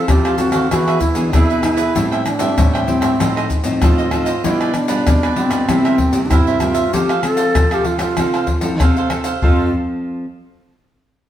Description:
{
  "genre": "samba and choro",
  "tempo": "96 BPM",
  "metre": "4/4",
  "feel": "straight",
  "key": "F major",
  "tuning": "A4 = 441 Hz",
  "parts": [
    { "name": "breathy bright bass bansuri", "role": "melody", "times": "0.0-9.7 s", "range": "C4 to A4", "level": "-19 LUFS", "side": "equal", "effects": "none" },
    { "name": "cavaquinho", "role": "accompaniment", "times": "0.0-9.7 s", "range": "D4 to G5", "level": "-23 LUFS", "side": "right 4 dB", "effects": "none" },
    { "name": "nylon-string guitar", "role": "accompaniment", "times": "0.0-10.2 s", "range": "G2 to A4", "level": "-22 LUFS", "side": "left 1 dB", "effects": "none" },
    { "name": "nylon-string guitar", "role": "bass", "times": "0.1-9.7 s", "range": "F2 to F3", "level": "-22 LUFS", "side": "equal", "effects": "none" },
    { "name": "maracas, surdo, pandeiro and tamborim", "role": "percussion", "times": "0.1-9.6 s", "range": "none", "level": "-18 LUFS", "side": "left 1 dB", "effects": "none" }
  ],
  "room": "wet stone room reverb, RT60 1.3 s",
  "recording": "band playing live in one room",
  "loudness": "-14 LUFS",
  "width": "side -11 dB against mid",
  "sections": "0.0-9.4 A section; 9.4-11.3 B section",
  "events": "none",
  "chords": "0.0 Fmaj7; 0.7 E7; 2.0 Am7; 3.2 F7/A; 4.4 G7/B; 5.7 C7; 6.9 F"
}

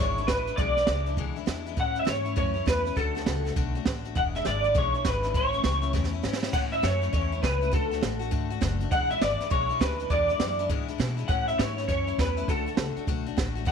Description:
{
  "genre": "rockabilly",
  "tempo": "202 BPM",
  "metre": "4/4",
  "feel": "swing 64% on 8ths",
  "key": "A major",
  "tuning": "A4 = 440 Hz",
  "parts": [
    { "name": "electric guitar through a small old amp", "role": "melody", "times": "0.0-13.7 s", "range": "A4 to F#5", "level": "-27 LUFS", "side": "equal", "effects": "ensemble chorus, tape echo" },
    { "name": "picked steel-string acoustic guitar", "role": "accompaniment", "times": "0.0-13.7 s", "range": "E2 to F#4", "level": "-34 LUFS", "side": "left 14 dB", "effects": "none" },
    { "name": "upright bass", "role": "bass", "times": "0.0-13.7 s", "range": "E1 to B2", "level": "-31 LUFS", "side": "equal", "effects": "none" },
    { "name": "jazz brush drum kit", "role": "drums", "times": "0.2-13.7 s", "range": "crash cymbal, hi-hat, kick drum, snare drum", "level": "-29 LUFS", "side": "right 3 dB", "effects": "none" }
  ],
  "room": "small room ambience",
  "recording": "1960s-style stereo",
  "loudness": "-24 LUFS",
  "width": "side -6 dB against mid",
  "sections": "0.0-6.5 A section; 6.5-13.7 A section",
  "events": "drum fill 5.9-6.5",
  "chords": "0.0 E7; 1.8 A; 3.0 D; 4.2 E7; 5.3 A; 7.7 D; 8.9 E7; 11.3 A; 12.5 D"
}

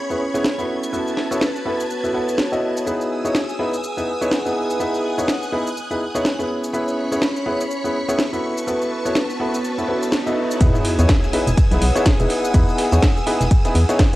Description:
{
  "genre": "piano house",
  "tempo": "124 BPM",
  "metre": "4/4",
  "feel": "swing 58% on 16ths",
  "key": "E major",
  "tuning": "A4 = 440 Hz",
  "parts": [
    { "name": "string machine, violins", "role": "sustained chords", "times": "0.0-14.2 s", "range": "B4 to G#6", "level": "-29 LUFS", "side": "equal", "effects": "ensemble chorus, sidechain pumping, cassette tape" },
    { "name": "warbly tape-like pad", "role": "texture", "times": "0.0-14.2 s", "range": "B3 to G#5", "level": "-27 LUFS", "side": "equal", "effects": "chorus, built-in reverb, sidechain pumping, cassette tape" },
    { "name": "warm upright piano", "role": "riff", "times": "0.1-14.2 s", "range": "B3 to D#5", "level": "-22 LUFS", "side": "equal", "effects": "sidechain pumping, cassette tape" },
    { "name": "house drum kit", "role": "drums", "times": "0.1-14.2 s", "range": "hi-hat, shaker, snare drum", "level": "-24 LUFS", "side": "equal", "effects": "studio reverb, cassette tape" },
    { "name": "riser and sub drop", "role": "sound effects", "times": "9.3-12.5 s", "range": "none", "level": "-30 LUFS", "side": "equal", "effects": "none" },
    { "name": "organ-like FM bass", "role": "bass", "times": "10.6-13.8 s", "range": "E1 to E2", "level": "-16 LUFS", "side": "equal", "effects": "sidechain pumping" },
    { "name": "dusty soul sampler-style drum kit", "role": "drums", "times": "10.6-14.1 s", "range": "ride cymbal, snare drum", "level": "-33 LUFS", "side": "equal", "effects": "overdrive, sidechain pumping on cymbals, high-pass filter on cymbals, studio reverb, cassette tape, high-pass filter on snare" },
    { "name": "electronic kick drum", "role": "drums", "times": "10.6-14.1 s", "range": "none", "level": "-16 LUFS", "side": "equal", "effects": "studio reverb, cassette tape" }
  ],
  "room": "light reverb",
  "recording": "home recording on cassette",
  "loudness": "-17 LUFS",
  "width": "side -17 dB against mid",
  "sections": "0.0-10.6 A section; 10.6-14.2 B section",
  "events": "drop 10.6-14.2; impact 10.6-12.5",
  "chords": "0.0 C#m7; 0.7 B7sus4; 2.9 Emaj7; 6.5 C#m7; 8.4 B7sus4; 10.6 Emaj7"
}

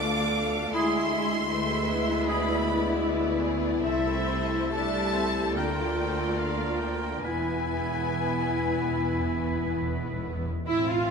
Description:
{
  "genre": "classical, slow romantic movement for symphony orchestra",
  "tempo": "64-80 BPM",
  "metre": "4/4",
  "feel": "rubato",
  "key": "unclear",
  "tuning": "A4 = 441 Hz",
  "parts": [
    { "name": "rich symphonic violin section", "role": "melody", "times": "0.0-9.8 s", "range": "E5 to D6", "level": "-32 LUFS", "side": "left 3 dB", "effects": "none" },
    { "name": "warm symphonic violin section", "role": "second line", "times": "0.0-11.1 s", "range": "G#4 to F5", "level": "-34 LUFS", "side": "left 3 dB", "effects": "none" },
    { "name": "rich symphonic viola section", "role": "accompaniment", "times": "0.0-11.1 s", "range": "G#3 to G4", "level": "-31 LUFS", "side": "right 2 dB", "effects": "none" },
    { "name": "warm French horn section", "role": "sustained chords", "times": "0.0-11.1 s", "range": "G#3 to F4", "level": "-33 LUFS", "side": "left 5 dB", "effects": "none" },
    { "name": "rich symphonic cello section", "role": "bass", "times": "0.0-11.1 s", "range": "C2 to C4", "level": "-36 LUFS", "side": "right 2 dB", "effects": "none" },
    { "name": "rich symphonic double bass section", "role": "bass", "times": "0.0-11.1 s", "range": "E1 to D2", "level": "-35 LUFS", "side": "right 4 dB", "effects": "none" },
    { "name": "warm clarinet", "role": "second line", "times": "0.7-10.3 s", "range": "E4 to F4", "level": "-34 LUFS", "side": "left 1 dB", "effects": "none" },
    { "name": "clear oboe", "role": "second line", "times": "0.8-10.3 s", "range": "G#4 to B4", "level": "-36 LUFS", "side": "right 1 dB", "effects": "none" },
    { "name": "timpani", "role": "percussion", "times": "7.2-10.6 s", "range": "E2", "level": "-36 LUFS", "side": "left 1 dB", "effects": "none" }
  ],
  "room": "wet scoring stage reverb, RT60 1.8 s",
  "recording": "minimal, uncompressed stereo recording",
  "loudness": "-25 LUFS",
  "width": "side -5 dB against mid",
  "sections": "0.0-10.7 A section",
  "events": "timpani fill 7.2-10.7",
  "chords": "0.0 Bdim/D; 0.8 E7/D; 3.8 Am/C; 5.5 Bb/D; 7.2 E"
}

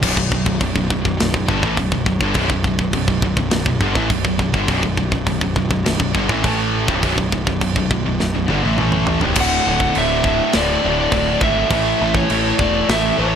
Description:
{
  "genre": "heavy metal",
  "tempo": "103 BPM",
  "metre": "4/4",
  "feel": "straight",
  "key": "B minor",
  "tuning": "A4 = 440 Hz",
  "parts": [
    { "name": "distorted electric guitar", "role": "riff", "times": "0.0-13.4 s", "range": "B1 to A3", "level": "-23 LUFS", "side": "left 12 dB", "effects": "overdrive" },
    { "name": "high-gain distorted guitar", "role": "riff", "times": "0.0-13.4 s", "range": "B1 to A3", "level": "-23 LUFS", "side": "right 9 dB", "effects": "distortion" },
    { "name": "high-gain distorted guitar", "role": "riff", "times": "0.0-13.4 s", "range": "B1 to A3", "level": "-26 LUFS", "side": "equal", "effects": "none" },
    { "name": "fuzz picked electric bass", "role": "bass", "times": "0.0-13.4 s", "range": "B0 to A1", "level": "-22 LUFS", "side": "equal", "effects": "overdrive" },
    { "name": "tight metal drum kit", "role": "drums", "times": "0.0-13.0 s", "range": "crash cymbal, kick drum, snare drum, toms", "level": "-21 LUFS", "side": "equal", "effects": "none" },
    { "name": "lead guitar through a small cranked amp", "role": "melody", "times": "9.4-13.4 s", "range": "C#5 to F#5", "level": "-19 LUFS", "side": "equal", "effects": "overdrive" }
  ],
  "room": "small room ambience",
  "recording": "none",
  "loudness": "-15 LUFS",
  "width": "side -8 dB against mid",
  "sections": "0.0-9.4 A section; 9.4-13.4 B section",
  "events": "drum fill 8.2-9.4",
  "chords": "0.0 Bm; 9.4 D; 11.7 A"
}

